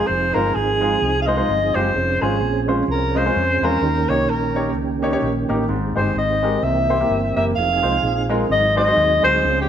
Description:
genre	uptempo gospel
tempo	128 BPM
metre	4/4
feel	swing 58% on 8ths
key	Ab major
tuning	A4 = 440 Hz
part	warm alto saxophone	melody	0.0-9.7 s	G4 to F5	-19 LUFS	equal	none
part	mellow tonewheel organ	sustained chords	0.0-9.7 s	Eb3 to Ab4	-24 LUFS	right 5 dB	fast rotary speaker, chorus vibrato
part	hollow-body short-scale fingered electric bass	bass	0.1-9.7 s	F1 to F2	-24 LUFS	equal	none
part	warm concert grand piano	accompaniment	0.3-9.7 s	Ab2 to Eb5	-23 LUFS	left 1 dB	none
room	moderate recital hall reverb, RT60 1.6 s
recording	none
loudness	-16 LUFS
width	side -9 dB against mid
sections	0.0-9.7 A section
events	none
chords	0.1 Fm7; 2.0 Dbmaj7/F; 3.8 Eb7; 5.7 Abmaj7; 6.6 C7; 7.6 Fm7; 8.5 Ab7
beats	| 0.09 0.55 1.02 1.49 | 1.96 2.42 2.89 3.36 | 3.83 4.29 4.76 5.23 | 5.70 6.16 6.63 7.10 | 7.57 8.03 8.50 8.97 | 9.44

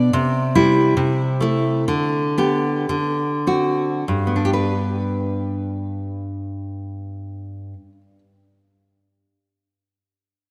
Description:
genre	romantic piece for solo classical guitar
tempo	49-76 BPM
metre	2/4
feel	rubato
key	G major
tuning	A4 = 440 Hz
part	nylon-string guitar	solo	0.0-8.2 s	G2 to D5	-21 LUFS	equal	none
room	wet lush hall reverb, RT60 2.8 s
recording	rough home demo mix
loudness	-20 LUFS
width	mono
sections	0.0-4.1 A section; 4.1-8.8 B section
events	slowing down 0.0-4.1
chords	0.1 C; 1.0 Am/C; 1.9 G/D; 2.9 D7; 4.1 G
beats	| 0.14 0.97 | 1.88 2.88 | 4.07 5.25 | 6.44 7.63

